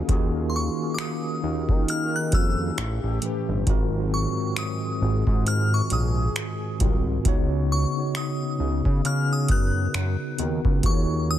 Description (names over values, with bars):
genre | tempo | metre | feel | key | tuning
contemporary R&B | 67 BPM | 4/4 | swing 58% on 16ths | Eb minor | A4 = 445 Hz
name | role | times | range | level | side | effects
mellow tine electric piano | accompaniment | 0.0-11.4 s | Ab2 to Db5 | -27 LUFS | equal | medium stereo tremolo
warm analog pad | sustained chords | 0.0-11.4 s | Db3 to F5 | -36 LUFS | equal | chorus
fat analog bass | bass | 0.0-11.4 s | G1 to Eb3 | -25 LUFS | equal | none
booming analog drum machine | drums | 0.1-11.1 s | finger snaps, hi-hat, kick drum | -23 LUFS | equal | overdrive, soft clipping on snare
glassy synth bell | melody | 0.5-11.4 s | C6 to Gb6 | -31 LUFS | left 2 dB | chorus, digital delay
room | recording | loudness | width
little or no reverb | dense, heavily limited modern master | -22 LUFS | side -12 dB against mid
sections
0.0-11.4 A section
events
none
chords
0.0 Ebm11; 2.8 A9; 3.7 Ab13; 7.3 Db9sus4; 10.8 Ebm11